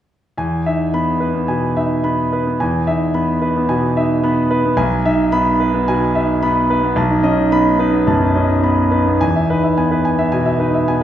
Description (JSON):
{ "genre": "classical, virtuoso piano study", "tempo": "109 BPM", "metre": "4/4", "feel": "rubato", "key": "E major", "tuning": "A4 = 439 Hz", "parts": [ { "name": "clear grand piano", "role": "solo", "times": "0.4-11.0 s", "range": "B1 to B5", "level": "-14 LUFS", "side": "equal", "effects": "none" } ], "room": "wet recital hall reverb, RT60 1.4 s", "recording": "heard from further back in the room", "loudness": "-14 LUFS", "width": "side -11 dB against mid", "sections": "0.4-9.2 A section; 9.2-11.0 B section", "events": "none", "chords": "0.4 E; 4.8 E/B; 7.0 B7; 9.2 E" }